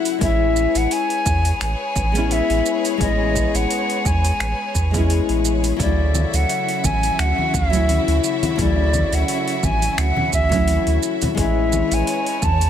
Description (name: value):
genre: sunset chillout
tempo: 86 BPM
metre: 4/4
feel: swing 55% on 16ths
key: D lydian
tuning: A4 = 441 Hz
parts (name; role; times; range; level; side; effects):
- nylon-string guitar; accompaniment; 0.0-12.7 s; C#3 to E4; -23 LUFS; moving between left 11 dB and right 7 dB; auto-pan, tape echo
- rich studio string section; sustained chords; 0.0-12.7 s; C#3 to F#5; -28 LUFS; left 2 dB; none
- deep house drum kit; drums; 0.1-12.7 s; finger snaps, hi-hat, shaker; -27 LUFS; right 3 dB; overdrive
- silver concert flute; melody; 0.2-12.7 s; D5 to A5; -23 LUFS; right 1 dB; tape echo
- round analog bass; bass; 0.2-12.7 s; A1 to E2; -20 LUFS; right 1 dB; tube saturation
- electronic kick drum; drums; 0.2-12.6 s; none; -25 LUFS; right 1 dB; overdrive
- congas; percussion; 6.1-12.6 s; none; -28 LUFS; left 2 dB; none
room: light reverb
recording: none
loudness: -17 LUFS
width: side -9 dB against mid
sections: 0.0-12.7 A section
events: none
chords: 0.2 Amaj9; 5.8 Dmaj9; 11.4 Amaj9